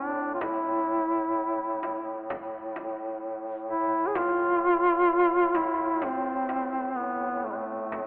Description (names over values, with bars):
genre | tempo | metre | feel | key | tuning
caucasian folk, Caucasian lament | 64 BPM | 4/4 | rubato | A minor | A4 = 440 Hz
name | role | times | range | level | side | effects
mellow duduk | melody | 0.0-8.1 s | G#3 to G#4 | -28 LUFS | equal | none
mellow duduk | drone | 0.0-8.1 s | A2 | -37 LUFS | equal | none
frame drum | percussion | 0.4-8.1 s | none | -44 LUFS | equal | none
room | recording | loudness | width
wet cathedral reverb, RT60 5.8 s | recorded in a church or concert hall, telephone sound | -28 LUFS | mono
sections
0.0-8.1 A section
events
none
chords
none